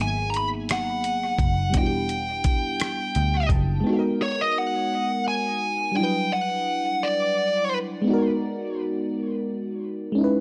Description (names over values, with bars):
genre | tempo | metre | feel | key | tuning
slow six-eight R&B | 57 BPM (dotted quarters) | 6/8 | straight | G# minor | A4 = 439 Hz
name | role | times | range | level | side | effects
high-gain lead guitar | melody | 0.0-7.8 s | C#5 to B5 | -28 LUFS | equal | distortion, tape echo
mellow FM electric piano | accompaniment | 0.0-10.4 s | F#3 to A5 | -28 LUFS | equal | chorus
vintage muted picked electric bass | bass | 0.0-3.8 s | E1 to D2 | -29 LUFS | equal | none
dusty soul sampler-style drum kit | drums | 0.3-3.7 s | hi-hat, kick drum, rim click | -27 LUFS | equal | none
room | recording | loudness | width
light reverb | echo-heavy mix | -24 LUFS | mono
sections
0.0-3.8 A section; 3.8-10.4 B section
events
FM electric piano fill 2.8-3.8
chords
0.0 G#m9; 1.7 Em9; 3.8 G#m9; 6.0 Em9; 8.1 G#m9